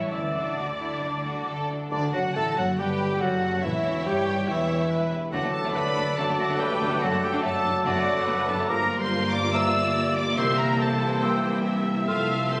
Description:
classical, dramatic, fast romantic movement for symphony orchestra; 141 BPM; 4/4; rubato; D major; A4 = 439 Hz
warm symphonic violin section; melody; 0.0-12.6 s; A4 to E6; -34 LUFS; equal
clear symphonic violin section; second line; 0.0-12.6 s; A3 to A4; -36 LUFS; equal
mellow cor anglais; second line; 0.0-12.2 s; A4 to A5; -36 LUFS; equal
rich symphonic viola section; accompaniment; 0.0-12.6 s; A4 to E5; -34 LUFS; equal
concert harp; arpeggios; 0.0-12.6 s; F2 to B4; -37 LUFS; equal
clear symphonic cello section; bass; 0.0-12.6 s; D2 to E3; -38 LUFS; equal
clear symphonic double bass section; bass; 0.0-12.6 s; E1 to D2; -36 LUFS; equal
clear clarinet; second line; 1.9-12.6 s; D4 to E5; -34 LUFS; equal
mellow hollow concert flute; second line; 1.9-12.3 s; D5 to F6; -35 LUFS; equal
dark bassoon; accompaniment; 1.9-12.2 s; D3 to Bb3; -35 LUFS; equal
mellow French horn section; sustained chords; 1.9-12.6 s; D3 to A4; -37 LUFS; equal
mellow trombone section; sustained chords; 1.9-12.6 s; D3 to Bb3; -34 LUFS; equal
timpani; percussion; 3.6-4.2 s; A2; -41 LUFS; equal
moderate concert hall reverb, RT60 2.1 s; recorded on a phone in the room, club reverb, compression; -25 LUFS; mono
0.0-1.9 A section; 1.9-12.6 A section
0.1 D; 3.6 A9/E; 5.3 D; 7.0 D/F#; 8.7 Gm7; 10.4 C7; 12.1 F
| 0.12 0.57 1.02 1.47 | 1.92 2.35 2.79 3.22 | 3.64 4.07 4.49 4.91 | 5.33 5.76 6.18 6.60 | 7.02 7.44 7.86 8.28 | 8.70 9.12 9.54 9.96 | 10.38 10.80 11.22 11.65 | 12.08 12.51

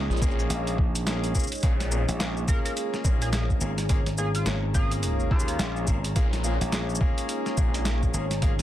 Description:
glitch hop; 106 BPM; 4/4; swing 60% on 16ths; Bb minor; A4 = 435 Hz
dark analog pad; sustained chords; 0.0-8.6 s; Ab4 to Eb6; -39 LUFS; left 1 dB; chorus, phaser, sidechain pumping
gritty slap bass; bass; 0.0-8.6 s; Ab1 to Eb2; -28 LUFS; equal; overdrive
deep dark ambient pad; texture; 0.0-8.6 s; Eb4 to Eb5; -36 LUFS; equal; chorus, built-in reverb, sidechain pumping
phased detuned saw bass; bass; 0.1-8.1 s; Bb1; -27 LUFS; equal; phaser, tube saturation
boom bap sampler-style drum kit; drums; 0.1-8.6 s; hi-hat, shaker, snare drum; -32 LUFS; equal
clear baby grand piano; stabs; 0.2-8.5 s; Bb3 to Ab4; -34 LUFS; left 2 dB; vintage 12-bit sampler grit, sidechain pumping, tape echo
electronic kick drum; drums; 0.2-8.6 s; -24 LUFS; equal
sync lead; melody; 2.5-5.9 s; F4 to Bb4; -36 LUFS; equal; chorus, tape echo
digital ambience; dense, heavily limited modern master; -23 LUFS; side -13 dB against mid
0.0-8.6 A section
0.0 Bbm7
0.50 1.06 | 1.63 2.20 2.76 3.33 | 3.89 4.46 5.03 5.59 | 6.16 6.72 7.29 7.86 | 8.42

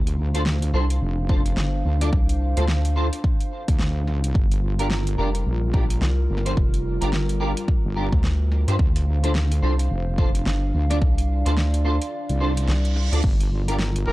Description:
glitch hop; 108 BPM; 4/4; swing 60% on 16ths; G minor pentatonic; A4 = 440 Hz
dark analog pad; sustained chords; 0.0-14.1 s; G3 to F5; -31 LUFS; right 1 dB; wide subtle chorus, sidechain pumping
wobble bass; bass; 0.0-14.1 s; F1 to D2; -22 LUFS; equal; chorus
pop drum kit; drums; 0.1-14.0 s; crash cymbal, hi-hat, snare drum; -30 LUFS; equal
clean electric guitar; stabs; 0.3-14.1 s; D4 to D5; -30 LUFS; equal; ensemble chorus, sidechain pumping, tape echo
rubbery square bass; bass; 0.7-14.1 s; F1 to G2; -21 LUFS; equal
electronic kick drum; drums; 1.3-13.4 s; -21 LUFS; equal
reverse cymbal; sound effects; 12.4-13.2 s; -36 LUFS; right 5 dB
brilliant trumpet; melody; 14.1 s; Bb4; -24 LUFS; equal
digital ambience; dry, gritty hardware recording, cassette tape; -19 LUFS; side -18 dB against mid
0.0-14.1 A section
kick drops out 12.1-13.2; reverse cymbal 12.4-13.2
0.0 Dm7; 4.3 Gm7; 8.8 Dm7; 13.2 Gm7
0.46 1.02 1.57 | 2.13 2.68 3.24 3.79 | 4.35 4.91 5.46 6.02 | 6.57 7.13 7.68 8.24 | 8.79 9.35 9.90 10.46 | 11.02 11.57 12.13 12.68 | 13.24 13.79

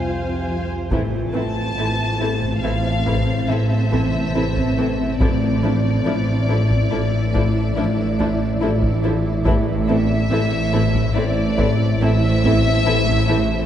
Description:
cinematic, suspense film score; 70 BPM; 5/4; straight; A minor; A4 = 437 Hz
rich studio violin section; melody; 0.0-13.7 s; D5 to A5; -26 LUFS; left 3 dB
dark studio violin section; second line; 0.0-13.4 s; E4 to F5; -29 LUFS; left 3 dB
dark studio viola section; accompaniment; 0.0-13.4 s; E3 to C5; -27 LUFS; right 2 dB
granular cloud pad; sustained chords; 0.0-13.7 s; C4 to A5; -26 LUFS; right 1 dB; built-in reverb
folk marimba with soft mallets; riff; 0.0-13.5 s; F2 to A3; -25 LUFS; left 5 dB
warm studio cello section; bass; 0.0-13.6 s; A2; -24 LUFS; right 3 dB
warm studio double bass section; bass; 0.0-13.6 s; A1 to F2; -25 LUFS; right 2 dB
organ-like drone; drone; 0.0-13.7 s; A1 to C2; -26 LUFS; equal; ensemble chorus, built-in reverb
taiko ensemble; drums; 0.9-13.7 s; -26 LUFS; equal
wet concert hall reverb, RT60 2.6 s; nothing above 10.9 kHz; -17 LUFS; side -10 dB against mid
0.9-13.7 A section
0.0 Fm/C; 0.9 Am; 5.2 Dmadd9/A; 9.5 Am
0.03 | 0.91 1.77 2.63 3.49 4.34 | 5.20 6.06 6.92 7.77 8.62 | 9.46 10.31 11.16 12.01 12.86

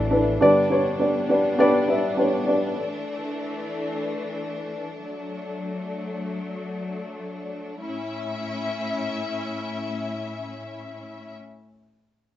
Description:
piano-driven pop; free time; A mixolydian; A4 = 436 Hz
dark upright piano; accompaniment; 0.0-2.8 s; G2 to E5; -19 LUFS; equal
warm studio string section; sustained chords; 0.0-11.3 s; A2 to E5; -29 LUFS; left 2 dB
moderate studio reverb, RT60 0.6 s; rough home demo mix, nothing above 7.9 kHz; -23 LUFS; side -12 dB against mid
0.0-7.8 A section; 7.8-10.6 B section
slowing down 2.8-7.8
0.4 G; 2.8 Asus4; 4.9 D; 7.8 A
free time

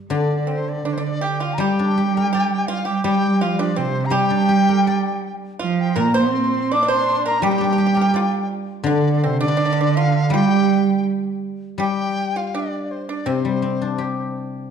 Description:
chinese traditional, Chinese chamber ensemble; 82 BPM; 2/4; straight; G yu mode; A4 = 441 Hz
guzheng; accompaniment; 0.0-14.7 s; Bb2 to D5; -24 LUFS; left 5 dB
large dizi; melody; 0.1-14.3 s; C5 to D6; -24 LUFS; left 3 dB
pipa; second line; 0.1-14.3 s; C4 to D5; -25 LUFS; right 2 dB
warm cello; second line; 0.1-11.1 s; C3 to D4; -20 LUFS; right 6 dB
wet recital hall reverb, RT60 1.6 s; dark, warm production; -17 LUFS; side -7 dB against mid
0.1-11.8 A section; 11.8-14.7 B section
| 0.12 0.86 | 1.59 2.31 | 3.04 3.76 | 4.50 5.23 | 5.97 6.71 | 7.43 8.15 | 8.87 9.60 | 10.33 11.07 | 11.81 12.54 | 13.27 13.99

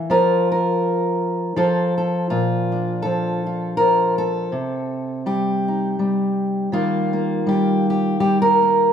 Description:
folk, solo fingerstyle acoustic guitar; 81 BPM; 3/4; swing 56% on 8ths; Bb major; A4 = 441 Hz
fingerpicked steel-string acoustic guitar; solo; 0.0-8.9 s; Bb2 to Bb4; -17 LUFS; equal
wet large studio reverb, RT60 1.2 s; band playing live in one room; -18 LUFS; side -8 dB against mid
0.0-2.3 A section; 2.3-8.9 B section
0.1 Fsus4; 1.6 F; 2.3 Bb; 4.5 Cm; 6.7 Eb
| 0.10 0.83 1.57 | 2.30 3.04 3.78 | 4.51 5.25 5.99 | 6.73 7.46 8.20

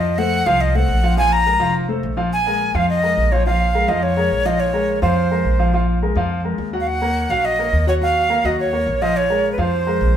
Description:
Afro-Cuban jazz; 210 BPM; 4/4; straight; Bb minor; A4 = 440 Hz
breathy bright jazz flute; melody; 0.0-10.2 s; Cb5 to Bb5; -19 LUFS; right 1 dB
warm concert grand piano; accompaniment; 0.0-10.1 s; F3 to Gb5; -22 LUFS; left 2 dB
upright bass; bass; 0.0-10.2 s; F1 to F2; -20 LUFS; equal
moderate stone room reverb, RT60 1.1 s; band playing live in one room; -16 LUFS; side -9 dB against mid
0.0-2.3 A section; 2.3-10.2 A section
0.0 F; 1.2 Bb5; 1.7 F; 2.3 Bbm7; 6.9 Ebm9; 9.2 Bbm9
| 0.03 0.32 0.60 0.89 | 1.17 1.46 1.75 2.03 | 2.31 2.60 2.88 3.17 | 3.46 3.74 4.02 4.31 | 4.59 4.88 5.16 5.45 | 5.73 6.02 6.30 6.59 | 6.87 7.16 7.44 7.73 | 8.01 8.30 8.58 8.87 | 9.15 9.44 9.72 10.01

